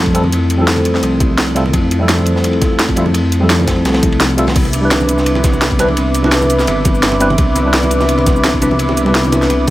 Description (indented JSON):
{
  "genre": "liquid drum and bass",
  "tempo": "170 BPM",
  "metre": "4/4",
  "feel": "swing 54% on 16ths",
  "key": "C major",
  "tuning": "A4 = 440 Hz",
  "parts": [
    { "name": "tine electric piano", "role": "accompaniment", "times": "0.0-9.7 s", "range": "F3 to B4", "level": "-17 LUFS", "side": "equal", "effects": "overdrive, phaser, low-pass filter, digital delay" },
    { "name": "vibraphone with medium mallets", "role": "arpeggios", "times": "0.0-9.7 s", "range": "A3 to E4", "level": "-19 LUFS", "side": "equal", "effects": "tape echo" },
    { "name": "dark detuned saw bass", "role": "bass", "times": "0.0-9.7 s", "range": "G1 to F2", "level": "-17 LUFS", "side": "equal", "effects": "tube saturation" },
    { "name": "crunchy breakbeat drum kit", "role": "drums", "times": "0.1-9.7 s", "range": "ride cymbal, snare drum", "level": "-24 LUFS", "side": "equal", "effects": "high-pass filter on cymbals, high-pass filter on snare, high-pass filter on room" },
    { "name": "drum and bass drum kit", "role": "drums", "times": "0.1-9.7 s", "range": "cabasa, crash cymbal, hi-hat, snare drum", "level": "-18 LUFS", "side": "equal", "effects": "overdrive" },
    { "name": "electronic kick drum", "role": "drums", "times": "0.1-9.7 s", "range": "none", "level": "-16 LUFS", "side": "equal", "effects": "overdrive" },
    { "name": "congas", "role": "percussion", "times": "0.2-9.7 s", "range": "none", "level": "-23 LUFS", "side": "right 3 dB", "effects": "none" },
    { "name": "warm analog pad", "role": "sustained chords", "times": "4.6-9.7 s", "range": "B4 to D6", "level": "-20 LUFS", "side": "equal", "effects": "chorus, sidechain pumping" }
  ],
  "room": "light reverb, small room ambience",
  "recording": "none",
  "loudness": "-11 LUFS",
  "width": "side -16 dB against mid",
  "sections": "0.0-9.7 A section",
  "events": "none",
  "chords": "0.0 Fmaj9; 4.6 Cmaj9",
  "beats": "| 0.32 0.68 1.03 1.38 | 1.74 2.09 2.44 2.79 | 3.15 3.50 3.85 4.21 | 4.56 4.91 5.26 5.62 | 5.97 6.32 6.68 7.03 | 7.38 7.74 8.09 8.44 | 8.79 9.15 9.50"
}